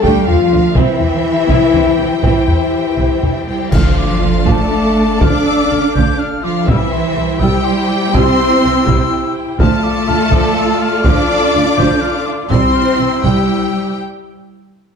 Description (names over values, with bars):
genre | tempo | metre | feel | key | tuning
cinematic, epic orchestral film score | 82 BPM (dotted quarters) | 6/8 | straight | D minor | A4 = 440 Hz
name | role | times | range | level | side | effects
warm symphonic violin section | melody | 0.0-14.0 s | E5 to D6 | -21 LUFS | left 3 dB | none
warm symphonic violin section | second line | 0.0-14.0 s | E4 to G5 | -23 LUFS | left 2 dB | none
dark symphonic viola section | accompaniment | 0.0-14.0 s | D3 to F4 | -22 LUFS | right 2 dB | none
mellow French horn section | sustained chords | 0.0-14.0 s | E3 to G4 | -18 LUFS | left 5 dB | none
warm symphonic string section | sustained chords | 0.0-14.0 s | D4 to G5 | -21 LUFS | equal | none
warm symphonic cello section | bass | 0.0-14.0 s | E3 to D4 | -19 LUFS | right 4 dB | none
warm symphonic double bass section | bass | 0.0-13.3 s | C2 to D2 | -21 LUFS | right 4 dB | none
taiko ensemble | drums | 0.0-13.7 s | none | -17 LUFS | equal | none
cymbal swell, clash cymbals and concert bass drum | percussion | 0.8-4.7 s | none | -22 LUFS | equal | none
silver concert flute | second line | 3.7-14.0 s | C6 to G6 | -24 LUFS | left 4 dB | none
timpani | percussion | 3.7-4.4 s | D3 | -23 LUFS | left 1 dB | none
room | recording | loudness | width
moderate recital hall reverb, RT60 1.3 s | dark, warm production | -11 LUFS | side -6 dB against mid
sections
0.0-3.7 A section; 3.7-15.0 B section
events
band accent 3.7-4.2; break 14.0-15.0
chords
0.0 Dm; 0.8 C; 3.7 Dm; 6.7 C; 9.6 Dm; 12.5 C